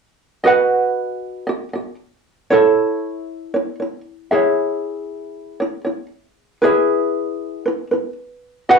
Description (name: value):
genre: pop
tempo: 116 BPM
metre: 4/4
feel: straight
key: E major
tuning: A4 = 438 Hz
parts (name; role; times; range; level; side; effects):
- ukulele; accompaniment; 0.4-8.8 s; E4 to F#5; -16 LUFS; right 1 dB; cassette tape
room: moderate small room reverb, RT60 0.6 s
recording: home recording on cassette, small room reverb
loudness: -17 LUFS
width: side -5 dB against mid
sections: 0.5-8.7 A section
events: none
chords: 0.5 B; 2.5 A; 4.3 C#m; 6.6 E